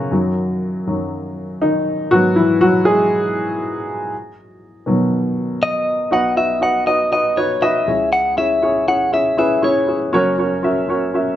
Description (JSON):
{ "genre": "pop", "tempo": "120 BPM", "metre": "4/4", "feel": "straight", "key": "unclear", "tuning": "A4 = 439 Hz", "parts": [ { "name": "warm baby grand piano", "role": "accompaniment", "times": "0.0-11.4 s", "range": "F#1 to F#5", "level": "-16 LUFS", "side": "equal", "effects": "none" }, { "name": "clean electric guitar", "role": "melody", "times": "5.6-10.0 s", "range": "C#5 to F#5", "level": "-17 LUFS", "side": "left 1 dB", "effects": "none" } ], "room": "moderate large studio reverb, RT60 0.9 s, small room ambience", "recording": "none", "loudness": "-15 LUFS", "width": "side -12 dB against mid", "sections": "0.0-6.1 A section; 6.1-11.4 B section", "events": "grand piano solo 0.0-6.1", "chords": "0.1 D#m/F#; 2.1 G#m; 4.1 B; 7.9 C#m; 10.1 F#", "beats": "| 0.11 0.61 1.11 1.62 | 2.12 2.62 3.12 3.62 | 4.12 4.62 5.12 5.62 | 6.12 6.62 7.12 7.62 | 8.13 8.63 9.13 9.63 | 10.13 10.63 11.13" }